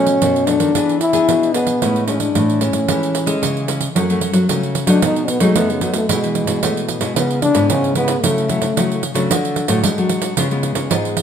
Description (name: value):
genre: samba and choro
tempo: 112 BPM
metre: 4/4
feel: straight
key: A major, F# minor from 4.0 s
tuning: A4 = 438 Hz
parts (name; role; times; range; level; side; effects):
- breathy trombone; melody; 0.0-9.0 s; C#3 to E4; -17 LUFS; left 1 dB; none
- nylon-string guitar; accompaniment; 0.0-11.2 s; F#2 to G#4; -21 LUFS; left 3 dB; none
- nylon-string guitar; bass; 0.0-11.2 s; G#2 to B3; -21 LUFS; equal; none
- pandeiro; percussion; 0.1-11.2 s; none; -21 LUFS; right 7 dB; none
room: light reverb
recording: minimal, uncompressed stereo recording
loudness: -14 LUFS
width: side -8 dB against mid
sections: 0.0-4.0 A section; 4.0-11.2 B section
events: trombone solo 4.0-11.2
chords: 0.0 Bm7; 0.8 E7; 1.8 Amaj7; 4.0 F#m; 5.0 B7; 6.1 Esus4/B; 7.2 C#m7; 8.2 F#m7/C#; 9.3 D; 10.4 C#7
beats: 0.21 0.75 1.28 | 1.82 2.35 2.89 3.42 | 3.96 4.49 5.03 5.56 | 6.09 6.63 7.16 7.70 | 8.23 8.77 9.30 9.84 | 10.37 10.91